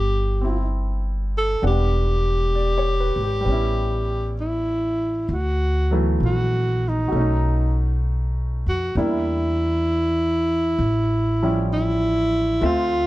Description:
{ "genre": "jazz ballad", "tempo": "65 BPM", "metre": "4/4", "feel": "swing 69% on 8ths", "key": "unclear", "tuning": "A4 = 440 Hz", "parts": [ { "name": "warm alto saxophone", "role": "melody", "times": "0.0-13.1 s", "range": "Eb4 to A4", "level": "-22 LUFS", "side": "equal", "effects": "none" }, { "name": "warm upright piano", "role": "accompaniment", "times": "0.0-13.1 s", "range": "E3 to F#5", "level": "-27 LUFS", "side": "equal", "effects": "none" }, { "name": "upright bass", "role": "bass", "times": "0.0-13.1 s", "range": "E1 to F2", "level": "-22 LUFS", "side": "equal", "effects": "none" } ], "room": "little or no reverb", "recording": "dark, warm production", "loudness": "-19 LUFS", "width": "side -17 dB against mid", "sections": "0.0-13.1 A section", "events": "none", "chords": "0.0 Cmaj9; 1.6 Em7; 3.4 A9; 5.3 D6; 7.1 B7; 9.0 Em7b5; 10.8 A7b13", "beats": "0.69 | 1.61 2.53 3.45 4.37 | 5.28 6.20 7.12 8.03 | 8.95 9.87 10.79 11.70 | 12.62" }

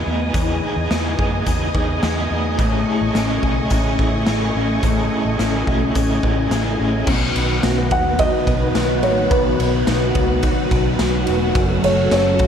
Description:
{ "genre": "dream pop", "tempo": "107 BPM", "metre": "4/4", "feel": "straight", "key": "unclear", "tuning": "A4 = 438 Hz", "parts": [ { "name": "crunchy overdriven guitar", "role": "accompaniment", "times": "0.0-7.1 s", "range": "E3 to G#4", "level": "-27 LUFS", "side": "right 4 dB", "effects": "tremolo, wide subtle chorus" }, { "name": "soft string machine", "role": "sustained chords", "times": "0.0-12.5 s", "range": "C#3 to D#6", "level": "-22 LUFS", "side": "equal", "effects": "ensemble chorus" }, { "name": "mellow electric guitar", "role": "arpeggios", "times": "0.0-12.5 s", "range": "F#2 to G#4", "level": "-24 LUFS", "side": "left 4 dB", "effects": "ensemble chorus, digital delay" }, { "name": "vintage muted fingered electric bass", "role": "bass", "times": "0.0-12.5 s", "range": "E1 to F#2", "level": "-23 LUFS", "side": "equal", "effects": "none" }, { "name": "raw garage drum kit", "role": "drums", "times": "0.3-12.5 s", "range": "crash cymbal, hi-hat, kick drum, ride cymbal, snare drum, tambourine", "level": "-21 LUFS", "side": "equal", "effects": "none" }, { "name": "felt-muted upright piano", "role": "melody", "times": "7.9-12.5 s", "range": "B4 to F#5", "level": "-20 LUFS", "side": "right 1 dB", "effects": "digital delay" } ], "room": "light reverb, small room ambience", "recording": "none", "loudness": "-16 LUFS", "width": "side -8 dB against mid", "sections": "0.0-7.1 A section; 7.1-12.5 B section", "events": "none", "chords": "0.0 Emaj7; 2.6 Amaj7; 7.1 B; 11.6 F#m", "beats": "| 0.34 0.90 1.46 2.02 | 2.59 3.15 3.71 4.27 | 4.83 5.39 5.95 6.51 | 7.07 7.63 8.19 8.75 | 9.31 9.88 10.44 11.00 | 11.56 12.12" }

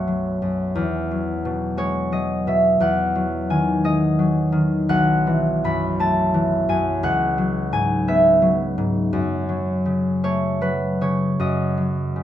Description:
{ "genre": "classical, solo harp piece", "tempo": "50-59 BPM (dotted quarters)", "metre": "6/8", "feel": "rubato", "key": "unclear", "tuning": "A4 = 440 Hz", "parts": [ { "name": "concert harp", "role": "solo", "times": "0.0-12.2 s", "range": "B1 to B5", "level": "-18 LUFS", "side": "equal", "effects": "none" } ], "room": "light reverb", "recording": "nothing above 10.6 kHz", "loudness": "-18 LUFS", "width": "side -11 dB against mid", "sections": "0.0-12.2 A section", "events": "none", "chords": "0.0 F#m7/B; 0.8 Eadd9; 2.8 G#5/E; 4.9 B7sus4; 7.0 C#m7; 9.1 F#m6", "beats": "| 0.77 1.79 | 2.81 3.84 | 4.89 5.99 | 7.02 8.07 | 9.12 10.23 | 11.40" }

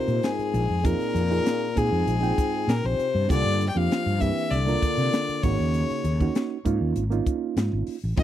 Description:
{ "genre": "electric jazz fusion", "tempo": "98 BPM", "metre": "4/4", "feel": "straight", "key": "unclear", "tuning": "A4 = 440 Hz", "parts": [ { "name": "clear violin", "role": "melody", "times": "0.0-8.2 s", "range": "Ab4 to G5", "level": "-28 LUFS", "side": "left 4 dB", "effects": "none" }, { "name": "breathy trombone", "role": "second line", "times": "0.0-8.2 s", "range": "Ab2 to G3", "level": "-31 LUFS", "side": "left 11 dB", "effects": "none" }, { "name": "reed electric piano", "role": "accompaniment", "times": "0.0-8.2 s", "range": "Ab3 to G5", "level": "-29 LUFS", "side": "right 9 dB", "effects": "none" }, { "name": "fretless electric bass", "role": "bass", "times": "0.1-8.2 s", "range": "Ab1 to C3", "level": "-25 LUFS", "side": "equal", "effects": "none" }, { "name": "crisp fusion drum kit", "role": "drums", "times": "0.1-8.2 s", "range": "hi-hat, kick drum, snare drum", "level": "-26 LUFS", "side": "equal", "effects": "none" }, { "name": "clean electric guitar", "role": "stabs", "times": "8.2 s", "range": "C4", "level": "-30 LUFS", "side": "left 22 dB", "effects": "wide subtle chorus" } ], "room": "little or no reverb", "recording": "dry, close 1970s-style studio recording", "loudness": "-22 LUFS", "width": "side -11 dB against mid", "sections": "0.0-8.2 A section", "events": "none", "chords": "0.0 Bb9sus4; 3.3 C9sus4; 5.4 Ab9sus4", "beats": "0.23 | 0.84 1.46 2.07 2.68 | 3.30 3.91 4.52 5.13 | 5.74 6.35 6.96 7.57 | 8.18" }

